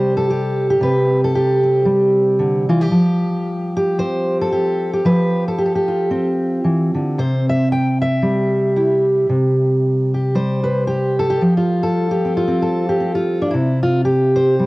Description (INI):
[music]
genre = folk, solo fingerstyle acoustic guitar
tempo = 113 BPM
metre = 4/4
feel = swing 57% on 8ths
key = C major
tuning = A4 = 440 Hz
[part]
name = fingerpicked steel-string acoustic guitar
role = solo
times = 0.0-14.7 s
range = C3 to G5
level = -15 LUFS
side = equal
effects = none
[sound]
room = light reverb, small room ambience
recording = home recording on cassette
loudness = -15 LUFS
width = side -21 dB against mid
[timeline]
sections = 0.0-14.7 A section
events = none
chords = 0.0 C5; 2.9 Fsus2; 7.2 C; 11.4 Fsus2; 13.5 C5